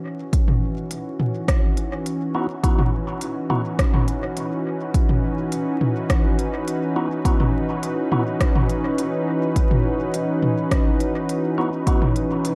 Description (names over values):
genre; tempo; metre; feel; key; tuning
ambient dub; 104 BPM; 4/4; straight; C# minor; A4 = 442 Hz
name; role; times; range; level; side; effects
warm analog pad; sustained chords; 0.0-12.6 s; E3 to B4; -26 LUFS; equal; subtle chorus
electronic kick drum; drums; 0.3-12.0 s; none; -23 LUFS; equal; overdrive, small room ambience
organic electronic drum kit; drums; 0.3-12.6 s; hi-hat, rim click, toms; -28 LUFS; equal; small room ambience, dub echo
percussive tonewheel organ; stabs; 2.3-12.1 s; B3 to F#4; -30 LUFS; equal; fast rotary speaker, dub echo
room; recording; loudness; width
moderate scoring stage reverb, RT60 1.6 s, digital ambience; vinyl crackle; -22 LUFS; mono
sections
0.0-12.6 A section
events
fade-in on analog synth pad 0.0-12.6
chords
0.0 C#m11